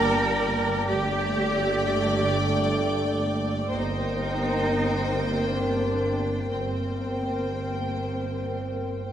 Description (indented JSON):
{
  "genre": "cinematic, suspense film score",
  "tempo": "free time",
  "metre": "none",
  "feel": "none",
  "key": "unclear",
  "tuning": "A4 = 438 Hz",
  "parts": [
    { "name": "rich studio violin section", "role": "melody", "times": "0.0-9.1 s", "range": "G5", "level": "-36 LUFS", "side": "left 3 dB", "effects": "none" },
    { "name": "rich studio violin section", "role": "second line", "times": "0.0-9.1 s", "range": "C5 to D5", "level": "-31 LUFS", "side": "left 1 dB", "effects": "none" },
    { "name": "rich studio viola section", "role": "accompaniment", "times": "0.0-9.1 s", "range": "A3 to Bb3", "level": "-32 LUFS", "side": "right 1 dB", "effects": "none" },
    { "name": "mellow French horn section", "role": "sustained chords", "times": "0.0-9.0 s", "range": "A3 to D4", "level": "-32 LUFS", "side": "left 1 dB", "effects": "none" },
    { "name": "warbly tape-like pad", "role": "sustained chords", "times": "0.0-9.1 s", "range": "A4 to A5", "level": "-32 LUFS", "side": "equal", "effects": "chorus, built-in reverb" },
    { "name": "clear studio double bass section", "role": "bass", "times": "0.0-9.1 s", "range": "G1", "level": "-30 LUFS", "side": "right 2 dB", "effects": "none" },
    { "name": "rich studio cello section", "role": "bass", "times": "0.0-8.8 s", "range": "C4 to Bb4", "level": "-30 LUFS", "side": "right 1 dB", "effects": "none" }
  ],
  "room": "wet recital hall reverb, RT60 1.6 s",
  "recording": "recorded in a church or concert hall",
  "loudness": "-23 LUFS",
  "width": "side -10 dB against mid",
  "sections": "0.0-9.1 A section",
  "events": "none",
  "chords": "0.0 Gmadd9; 3.7 Eb6/G"
}